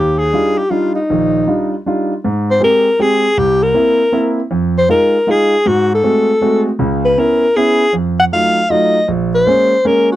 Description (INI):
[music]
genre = jazz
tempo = 158 BPM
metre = 3/4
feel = swing 66% on 8ths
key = Ab major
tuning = A4 = 439 Hz
[part]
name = breathy alto saxophone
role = melody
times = 0.0-10.2 s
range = Eb4 to Gb5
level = -12 LUFS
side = left 1 dB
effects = none
[part]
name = warm concert grand piano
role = accompaniment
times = 0.0-10.1 s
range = Bb1 to G4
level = -16 LUFS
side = right 2 dB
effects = none
[sound]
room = little or no reverb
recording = dry, close 1970s-style studio recording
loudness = -11 LUFS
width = side -14 dB against mid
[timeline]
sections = 0.0-2.2 A section; 2.2-10.2 B section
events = none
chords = 0.0 Ebmaj9; 2.2 Abmaj7; 3.4 C7; 4.5 Fm7; 5.6 Ab7b9; 6.8 Dbm7; 7.9 F7b9; 9.1 Bbm7